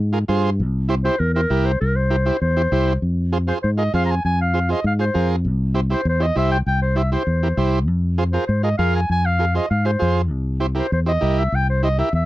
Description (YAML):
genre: latin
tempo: 198 BPM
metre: 4/4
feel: straight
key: F harmonic minor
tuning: A4 = 441 Hz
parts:
  - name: fingered electric bass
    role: bass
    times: 0.0-12.3 s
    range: C2 to Ab2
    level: -19 LUFS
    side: equal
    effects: none
  - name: combo organ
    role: accompaniment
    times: 0.1-12.1 s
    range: E4 to C5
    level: -23 LUFS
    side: right 3 dB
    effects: none
  - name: clear clarinet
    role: melody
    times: 1.0-12.3 s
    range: Bb4 to Bb5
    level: -22 LUFS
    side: left 1 dB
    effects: none
room: little or no reverb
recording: dry, close 1970s-style studio recording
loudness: -17 LUFS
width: side -16 dB against mid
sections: 0.0-3.0 A section; 3.0-12.3 B section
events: clarinet solo 0.0-3.0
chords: 0.0 Fm; 0.6 C7; 3.0 Fm; 5.5 C; 7.9 Fm; 10.3 C7